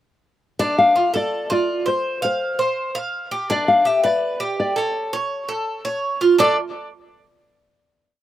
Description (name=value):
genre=latin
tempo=166 BPM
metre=4/4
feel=straight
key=D dorian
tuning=A4 = 441 Hz
part: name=nylon-string guitar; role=melody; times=0.6-6.6 s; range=C5 to F5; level=-19 LUFS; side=left 3 dB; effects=none
part: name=Cuban tres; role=arpeggios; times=0.6-6.6 s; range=D4 to F5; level=-21 LUFS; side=right 3 dB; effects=slapback echo
room=little or no reverb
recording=recorded outdoors, with no room sound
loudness=-18 LUFS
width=side -12 dB against mid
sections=0.6-6.4 verse; 6.4-7.8 final chord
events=none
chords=0.6 Dm; 2.0 F5; 3.5 G; 4.9 A; 6.4 D5